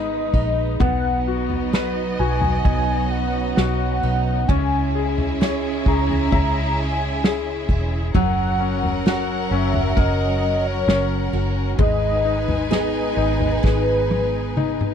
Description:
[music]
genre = pop ballad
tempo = 65 BPM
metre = 4/4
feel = straight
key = C# dorian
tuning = A4 = 441 Hz
[part]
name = warm velvety synth lead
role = melody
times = 0.0-14.9 s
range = B4 to A#5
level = -25 LUFS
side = equal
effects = chorus, slapback echo
[part]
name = bright upright piano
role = accompaniment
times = 0.0-14.9 s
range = F#3 to E5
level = -26 LUFS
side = left 19 dB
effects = none
[part]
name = rich studio string section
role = sustained chords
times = 0.0-14.9 s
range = C#3 to B4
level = -31 LUFS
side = right 2 dB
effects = none
[part]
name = picked steel-string acoustic guitar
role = arpeggios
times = 0.0-14.9 s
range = G#2 to B4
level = -28 LUFS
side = right 17 dB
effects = none
[part]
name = vintage muted fingered electric bass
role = bass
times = 0.0-14.9 s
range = E1 to C#2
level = -24 LUFS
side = equal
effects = none
[part]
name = unplugged drum kit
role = drums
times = 0.3-14.9 s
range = kick drum, snare drum, toms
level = -21 LUFS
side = equal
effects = none
[part]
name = warm studio violin section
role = second line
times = 0.8-14.9 s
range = B3 to G#5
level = -30 LUFS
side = right 2 dB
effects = none
[sound]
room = little or no reverb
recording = dry, close 1970s-style studio recording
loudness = -18 LUFS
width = side -8 dB against mid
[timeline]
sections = 0.0-14.9 A section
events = drum fill 13.6-14.9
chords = 0.0 G#m; 0.8 B; 4.5 C#m; 8.2 F#; 11.8 G#m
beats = | 0.81 1.73 2.65 3.57 | 4.49 5.41 6.33 7.24 | 8.15 9.06 9.97 10.88 | 11.79 12.71 13.63 14.57

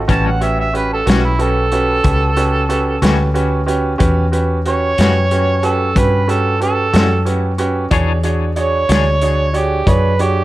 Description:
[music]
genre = slow blues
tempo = 61 BPM (dotted quarters)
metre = 12/8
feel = straight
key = A mixolydian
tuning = A4 = 440 Hz
[part]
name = bright upright piano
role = accompaniment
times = 0.0-10.4 s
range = C#4 to C#5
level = -19 LUFS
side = right 2 dB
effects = analog delay
[part]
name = vintage muted fingered electric bass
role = bass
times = 0.0-10.4 s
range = A1 to G2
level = -17 LUFS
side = left 1 dB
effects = none
[part]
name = mellow harmonica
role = second line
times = 0.1-10.4 s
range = E4 to A5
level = -18 LUFS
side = right 3 dB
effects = overdrive
[part]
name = clean electric guitar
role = accompaniment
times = 0.1-9.1 s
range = A2 to C#5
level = -24 LUFS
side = left 7 dB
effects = tremolo, analog delay
[part]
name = crunchy breakbeat drum kit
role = drums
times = 0.1-10.3 s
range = hi-hat, kick drum, snare drum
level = -18 LUFS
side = left 1 dB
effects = none
[sound]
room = small room ambience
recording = echo-heavy mix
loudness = -13 LUFS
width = side -16 dB against mid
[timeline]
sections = 0.0-10.4 A section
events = harmonica solo 0.0-10.4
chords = 0.1 A13; 7.9 E13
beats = | 0.09 1.07 2.05 3.03 | 4.00 4.98 5.96 6.94 | 7.92 8.89 9.87

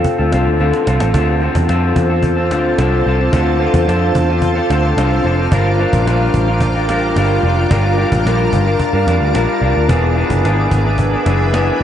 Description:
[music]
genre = indie pop, bedroom pop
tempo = 110 BPM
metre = 4/4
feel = straight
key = D minor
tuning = A4 = 440 Hz
[part]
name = electric guitar through a small old amp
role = accompaniment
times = 0.0-11.8 s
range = D3 to Bb4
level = -16 LUFS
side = left 2 dB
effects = lush chorus, vibrato effect
[part]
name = cajon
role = drums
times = 0.0-11.7 s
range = none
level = -22 LUFS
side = equal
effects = none
[part]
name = vintage muted picked electric bass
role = bass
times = 0.2-11.8 s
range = E1 to G2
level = -16 LUFS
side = equal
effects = none
[part]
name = shimmering ambient pad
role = sustained chords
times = 1.9-11.8 s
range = Bb4 to D6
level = -22 LUFS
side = right 2 dB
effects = chorus, built-in reverb
[sound]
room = moderate huge ambient reverb, RT60 3.9 s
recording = dreamy mix soaked in reverb, nothing above 10.3 kHz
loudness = -12 LUFS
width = side -10 dB against mid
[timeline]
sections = 0.0-1.2 A section; 1.2-11.8 A section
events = drum fill 0.6-1.2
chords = 0.0 Dm7; 5.5 Gm7; 9.9 E7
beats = 0.06 0.60 | 1.15 1.70 2.24 2.79 | 3.34 3.88 4.43 4.98 | 5.52 6.07 6.61 7.16 | 7.71 8.25 8.80 9.35 | 9.89 10.44 10.98 11.53

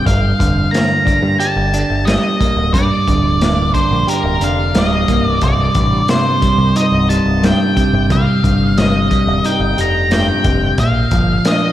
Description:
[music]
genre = psychedelic rock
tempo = 90 BPM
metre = 4/4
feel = straight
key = C dorian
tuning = A4 = 439 Hz
[part]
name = octave-fuzz lead guitar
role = melody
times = 0.0-11.7 s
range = Bb4 to Bb5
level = -18 LUFS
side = left 1 dB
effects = distortion, analog delay
[part]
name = semi-hollow electric guitar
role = riff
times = 0.0-11.7 s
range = C2 to G4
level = -16 LUFS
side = right 1 dB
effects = flanger
[part]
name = growling picked electric bass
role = bass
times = 0.1-11.4 s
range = C1 to G2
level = -18 LUFS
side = equal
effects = overdrive
[part]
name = crunchy breakbeat drum kit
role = drums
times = 0.1-11.6 s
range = hi-hat, kick drum, snare drum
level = -18 LUFS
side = equal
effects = none
[sound]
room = moderate plate reverb, RT60 2.9 s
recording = dreamy mix soaked in reverb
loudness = -12 LUFS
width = side -12 dB against mid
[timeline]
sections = 0.0-11.7 A section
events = none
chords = 0.1 Gm; 5.4 Cm; 10.8 Bb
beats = | 0.06 0.73 1.40 2.07 | 2.74 3.41 4.08 4.75 | 5.42 6.09 6.76 7.43 | 8.10 8.77 9.44 10.11 | 10.79 11.46

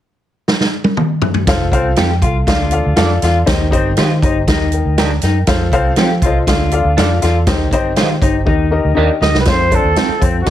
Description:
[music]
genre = uptempo 1960s-style soul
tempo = 120 BPM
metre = 4/4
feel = straight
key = F mixolydian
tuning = A4 = 438 Hz
[part]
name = swinging big-band drum kit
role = drums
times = 0.5-10.5 s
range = hi-hat, kick drum, snare drum, toms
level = -16 LUFS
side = right 1 dB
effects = none
[part]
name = dark upright piano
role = accompaniment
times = 1.5-10.5 s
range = D3 to Bb5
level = -18 LUFS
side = left 4 dB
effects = none
[part]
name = vintage muted fingered electric bass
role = bass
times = 1.5-10.5 s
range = F1 to F3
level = -16 LUFS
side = right 1 dB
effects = none
[part]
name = electric guitar through a small old amp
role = riff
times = 1.7-10.4 s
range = C4 to G4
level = -21 LUFS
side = left 5 dB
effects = none
[part]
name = electric guitar through a small old amp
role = stabs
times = 2.0-10.1 s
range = C4 to Eb5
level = -21 LUFS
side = right 8 dB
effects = ensemble chorus
[part]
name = growling trumpet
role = melody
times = 9.2-10.5 s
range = Gb4 to Eb5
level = -16 LUFS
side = right 2 dB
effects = none
[sound]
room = light reverb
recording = heavily compressed radio sound, multiband compression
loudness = -12 LUFS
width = side -12 dB against mid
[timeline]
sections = 0.0-1.5 A section; 1.5-9.5 B section; 9.5-10.5 C section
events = drum fill 0.5-1.5, 8.5-9.5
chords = 0.0 N.C.; 1.5 F; 2.5 Dm; 3.5 Cm; 4.5 Eb; 5.5 F; 6.5 Dm; 7.5 Cm; 8.5 Eb; 9.5 F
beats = 0.48 0.98 | 1.48 1.98 2.48 2.98 | 3.48 3.98 4.48 4.98 | 5.48 5.98 6.47 6.97 | 7.47 7.97 8.47 8.97 | 9.47 9.97 10.47

